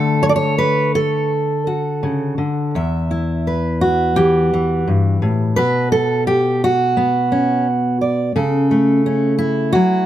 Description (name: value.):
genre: folk, solo fingerstyle acoustic guitar.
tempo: 86 BPM.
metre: 4/4.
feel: rubato.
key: E dorian.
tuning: A4 = 440 Hz.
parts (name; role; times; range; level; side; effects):
fingerpicked steel-string acoustic guitar; solo; 0.0-10.1 s; E2 to E5; -15 LUFS; equal; none.
room: little or no reverb.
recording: close, detailed microphones.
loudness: -15 LUFS.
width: side -12 dB against mid.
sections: 0.0-10.1 A section.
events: none.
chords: 0.0 D; 2.7 Em; 5.6 B5; 8.3 F#m/C#.